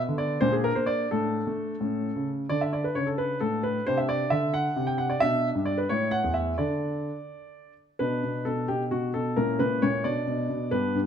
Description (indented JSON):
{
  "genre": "classical-period piano sonatina",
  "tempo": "88 BPM (dotted quarters)",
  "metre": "6/8",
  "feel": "rubato",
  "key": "D major, B minor from 8.0 s",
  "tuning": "A4 = 440 Hz",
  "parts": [
    { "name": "warm concert grand piano", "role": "solo", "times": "0.0-11.1 s", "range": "E2 to G5", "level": "-24 LUFS", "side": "equal", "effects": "none" }
  ],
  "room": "moderate recital hall reverb, RT60 1.4 s",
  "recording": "close, detailed microphones",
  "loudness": "-24 LUFS",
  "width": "side -8 dB against mid",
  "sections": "0.0-8.0 A section; 8.0-11.1 B section",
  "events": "none",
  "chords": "0.4 Bb9; 1.1 D5/A; 1.8 A; 2.5 D5; 3.9 Cadd9; 5.2 G/B; 5.9 A5; 6.6 D5; 8.0 Bm; 9.4 A#dim; 10.0 Bm",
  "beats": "0.42 | 1.10 1.80 | 2.50 3.18 | 3.86 4.54 | 5.21 5.89 | 6.59 7.30 | 8.00 8.69 | 9.37 10.04 | 10.72"
}